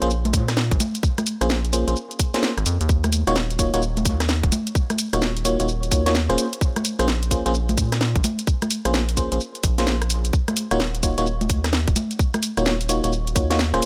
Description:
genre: UK garage, two-step garage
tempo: 129 BPM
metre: 4/4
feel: swing 64% on 16ths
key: Eb dorian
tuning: A4 = 440 Hz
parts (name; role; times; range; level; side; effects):
- FM electric piano; stabs; 0.0-13.9 s; Bb3 to Db5; -27 LUFS; equal; chorus, dub echo
- rubbery square bass; bass; 0.0-13.8 s; Eb1 to Bb2; -26 LUFS; equal; tube saturation
- garage drum kit; drums; 0.0-13.9 s; congas, hi-hat, rim click, shaker, snare drum; -26 LUFS; equal; none
- electronic kick drum; drums; 0.3-13.5 s; none; -24 LUFS; equal; none
room: little or no reverb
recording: none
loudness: -22 LUFS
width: mono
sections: 0.0-13.9 A section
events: none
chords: 0.0 Bbm9; 2.9 Ebm7; 6.4 Bbm9; 10.3 Ebm7

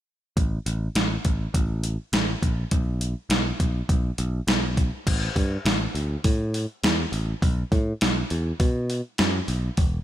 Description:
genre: indie rock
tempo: 102 BPM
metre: 4/4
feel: straight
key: unclear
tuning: A4 = 438 Hz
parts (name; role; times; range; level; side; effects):
- picked electric bass; bass; 0.4-10.0 s; E1 to B2; -26 LUFS; equal; none
- clean 12-bit digital drum machine; drums; 0.4-9.9 s; crash cymbal, hi-hat, kick drum, snare drum; -23 LUFS; equal; none
room: little or no reverb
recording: none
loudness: -22 LUFS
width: side -12 dB against mid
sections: 0.4-5.1 A section; 5.1-10.0 B section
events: none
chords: none

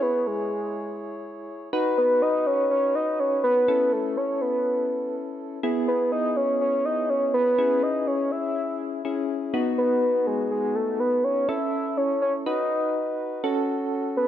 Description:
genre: pop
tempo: 123 BPM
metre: 4/4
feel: straight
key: unclear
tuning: A4 = 440 Hz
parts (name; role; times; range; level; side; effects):
- soft octave-layered synth lead; melody; 0.0-14.3 s; G#4 to E5; -23 LUFS; equal; chorus, ping-pong delay
- soft electric-piano-like synth keys; accompaniment; 0.0-14.3 s; B3 to C#5; -27 LUFS; left 1 dB; chorus, tremolo
room: wet recital hall reverb, RT60 1.6 s, digital ambience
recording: none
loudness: -22 LUFS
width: side -11 dB against mid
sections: 0.0-13.4 A section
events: none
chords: 0.0 C#m; 1.7 B; 3.7 Aadd9; 5.6 E; 7.6 C#m; 9.5 B; 11.5 A; 12.5 B; 13.4 F#m

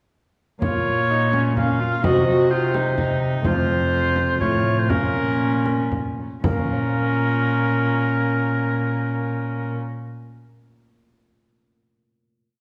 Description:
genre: classical, renaissance-style consort dance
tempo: 114-128 BPM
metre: 3/4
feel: straight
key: Bb harmonic minor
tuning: A4 = 440 Hz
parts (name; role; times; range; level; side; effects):
- warm oboe; melody; 0.6-9.8 s; Bb4 to F5; -27 LUFS; equal; none
- warm viola; second line; 0.6-9.8 s; Db4 to Gb4; -27 LUFS; equal; none
- concert harp; accompaniment; 0.6-10.3 s; F2 to Db5; -30 LUFS; equal; none
- warm cello; bass; 0.6-9.8 s; F2 to C3; -26 LUFS; equal; none
- frame drum; percussion; 0.6-6.7 s; none; -29 LUFS; equal; none
room: wet recital hall reverb, RT60 1.5 s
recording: heard from further back in the room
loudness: -21 LUFS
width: mono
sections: 0.6-6.4 A section; 6.4-9.6 final chord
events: slowing down 2.7-6.4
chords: 0.6 Bbm; 2.0 Cdim; 3.4 F; 4.9 Bbm

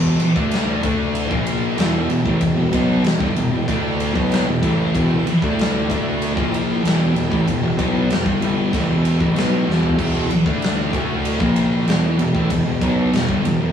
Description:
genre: stoner and doom metal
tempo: 95 BPM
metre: 4/4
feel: straight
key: unclear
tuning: A4 = 440 Hz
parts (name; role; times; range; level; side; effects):
- shimmering ambient pad; sustained chords; 2.1-13.7 s; E4 to G5; -34 LUFS; equal; none
- scooped high-gain guitar; riff; 0.0-13.7 s; E2 to D4; -27 LUFS; equal; distortion
- thick fuzz guitar; riff; 0.0-13.7 s; E2 to D4; -23 LUFS; left 5 dB; distortion
- thick fuzz guitar; riff; 0.0-13.7 s; E2 to D4; -21 LUFS; right 3 dB; distortion
- fuzz picked electric bass; bass; 0.0-13.7 s; E1 to D2; -24 LUFS; left 1 dB; overdrive
- big rock drum kit; drums; 0.2-13.6 s; crash cymbal, kick drum, ride cymbal, snare drum, toms; -23 LUFS; equal; none
room: moderate small room reverb, RT60 0.6 s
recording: rough rehearsal-room recording, studio reverb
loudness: -16 LUFS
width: side -8 dB against mid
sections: 0.0-13.7 A section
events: drum fill 9.7-10.0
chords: 0.0 Em

